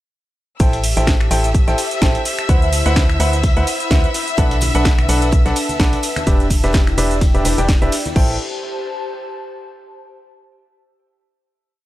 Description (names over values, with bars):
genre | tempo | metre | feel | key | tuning
piano house | 127 BPM | 4/4 | swing 56% on 16ths | A dorian | A4 = 440 Hz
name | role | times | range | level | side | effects
bright studio violin section | sustained chords | 0.6-8.2 s | E5 to E6 | -25 LUFS | left 3 dB | sidechain pumping
clear upright piano | riff | 0.6-8.3 s | D4 to G5 | -22 LUFS | equal | sidechain pumping, digital delay
organ-like FM bass | bass | 0.6-8.4 s | E1 to D2 | -19 LUFS | equal | sidechain pumping
dusty soul sampler-style drum kit | drums | 0.6-8.0 s | hi-hat, shaker, snare drum | -32 LUFS | left 1 dB | none
electronic kick drum | drums | 0.6-8.3 s | none | -15 LUFS | equal | none
house drum kit | drums | 0.6-8.3 s | cabasa, crash cymbal, finger snaps, hi-hat, ride cymbal, snare drum | -24 LUFS | equal | none
airy breathy pad | texture | 0.6-10.0 s | D4 to B5 | -27 LUFS | left 1 dB | chorus, sidechain pumping
tambourine and congas | percussion | 4.4-8.1 s | none | -31 LUFS | right 2 dB | none
room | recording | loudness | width
little or no reverb | dark, warm production | -14 LUFS | side -15 dB against mid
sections
0.6-8.2 drop; 8.2-10.0 final chord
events
drop 0.6-8.2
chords
0.6 Am7; 2.5 D13; 4.4 Bm7; 6.3 Em7; 8.2 Am7